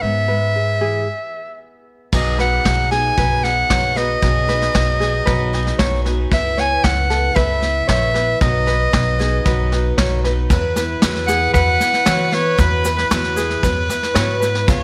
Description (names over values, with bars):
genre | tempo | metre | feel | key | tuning
indie folk with a building arrangement | 115 BPM | 4/4 | straight | E major | A4 = 437 Hz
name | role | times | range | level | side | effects
edgy soprano saxophone | melody | 0.0-13.1 s | B4 to G#5 | -21 LUFS | equal | none
fingerpicked steel-string acoustic guitar | accompaniment | 0.0-3.2 s | G#2 to G#4 | -31 LUFS | equal | none
upright bass | bass | 0.0-14.8 s | A#1 to E3 | -23 LUFS | equal | none
ukulele | arpeggios | 0.3-14.7 s | G#4 to C#5 | -28 LUFS | equal | none
picked twelve-string acoustic guitar | accompaniment | 2.1-14.8 s | B2 to B4 | -27 LUFS | equal | none
vintage brush drum kit | drums | 2.1-14.8 s | crash cymbal, kick drum, snare drum | -23 LUFS | equal | none
warm fiddle | second line | 10.5-14.8 s | B4 to C#5 | -26 LUFS | equal | none
egg shaker | percussion | 10.5-14.8 s | none | -36 LUFS | equal | none
room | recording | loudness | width
light reverb, studio reverb | none | -17 LUFS | mono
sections
0.0-2.1 A section; 2.1-10.5 B section; 10.5-14.8 C section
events
stop 1.1-2.1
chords
0.0 E/G#; 2.1 B6; 6.3 Aadd9/C#; 8.4 B; 10.5 Esus2